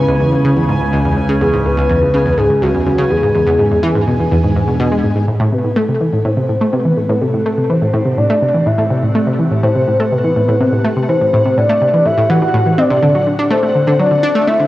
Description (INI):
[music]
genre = ambient, sequencer-driven space music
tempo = 124 BPM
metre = 4/4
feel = straight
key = A dorian from 5.3 s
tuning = A4 = 440 Hz
[part]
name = soft octave-layered synth lead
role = melody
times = 0.0-14.7 s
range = F#4 to F#5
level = -16 LUFS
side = left 1 dB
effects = chorus, tremolo, cassette tape, shimmer reverb, tape echo
[part]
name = evolving wavetable pad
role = sustained chords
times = 0.0-14.7 s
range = A2 to C5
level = -23 LUFS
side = equal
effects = phaser, built-in reverb, cassette tape, shimmer reverb
[part]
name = analog drone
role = bass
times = 0.0-5.3 s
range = C#2 to E2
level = -19 LUFS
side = equal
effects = chorus
[part]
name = bubbling stepped-filter texture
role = texture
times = 0.0-14.7 s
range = F#5 to G#5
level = -31 LUFS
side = right 1 dB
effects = chorus, built-in reverb, cassette tape, shimmer reverb
[part]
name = analog pluck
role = riff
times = 0.1-14.6 s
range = C#2 to D4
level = -14 LUFS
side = equal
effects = chorus, cassette tape, shimmer reverb, tape echo
[sound]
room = wet studio reverb, RT60 0.5 s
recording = home recording on cassette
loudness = -11 LUFS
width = side -16 dB against mid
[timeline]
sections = 0.0-5.3 A section; 5.3-14.7 B section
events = fade-in on ambient pad 5.3-14.7; fade-in on synth texture 5.3-14.7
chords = 0.0 C#m7; 3.3 E7; 5.3 Am7; 13.0 D7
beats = 0.44 0.93 | 1.41 1.89 2.38 2.86 | 3.35 3.83 4.31 4.80 | 5.28 5.76 6.25 6.73 | 7.22 7.70 8.18 8.67 | 9.15 9.64 10.12 10.60 | 11.09 11.57 12.05 12.54 | 13.02 13.51 13.99 14.47